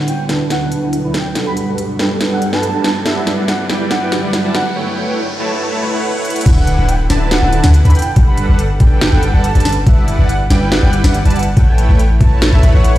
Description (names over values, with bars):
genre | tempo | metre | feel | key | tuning
future bass | 141 BPM | 4/4 | half-time | D major | A4 = 441 Hz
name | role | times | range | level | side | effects
shimmering ambient pad | sustained chords | 0.0-4.7 s | D2 to B3 | -25 LUFS | right 1 dB | chorus, built-in reverb, sidechain pumping
soft supersaw | riff | 0.0-13.0 s | D3 to B5 | -18 LUFS | right 1 dB | sidechain pumping, low-pass filter
riser, noise sweep and sub drop | sound effects | 0.0-8.2 s | none | -27 LUFS | equal | none
warm velvety synth lead | melody | 0.1-13.0 s | C#5 to B5 | -24 LUFS | right 1 dB | chorus, sidechain pumping, tape echo
trap drum kit | drums | 0.1-13.0 s | crash cymbal, hi-hat, snare drum | -20 LUFS | equal | none
airy dreamy lead | arpeggios | 6.5-13.0 s | F#5 to B5 | -26 LUFS | equal | chorus, sidechain pumping
warm 808-style bass | bass | 6.5-13.0 s | D1 to D2 | -12 LUFS | equal | sidechain pumping
electronic kick drum | drums | 6.5-12.3 s | none | -9 LUFS | equal | none
room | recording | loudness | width
light reverb, digital ambience | played on a big sound system in a bare room, large studio reverb | -11 LUFS | side -14 dB against mid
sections
0.0-6.5 A section; 6.5-13.0 B section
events
build-up 0.0-6.5; drum fill 0.0-4.8, 6.2; riser 0.0-6.5; filter sweep on supersaw synth 0.0-6.5; break 4.8-6.5; noise sweep 4.8-6.5; drop 6.5-13.0; impact 6.5-8.2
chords
0.0 D6; 1.1 Gmaj9; 3.1 Em9/G; 4.8 A9; 6.5 D6; 8.0 Gmaj9; 9.9 Em9/G; 11.6 A9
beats
0.08 0.50 0.93 | 1.35 1.78 2.21 2.63 | 3.06 3.48 3.91 4.33 | 4.76 5.18 5.61 6.04 | 6.46 6.89 7.31 7.74 | 8.16 8.59 9.02 9.44 | 9.87 10.29 10.72 11.14 | 11.57 11.99 12.42 12.85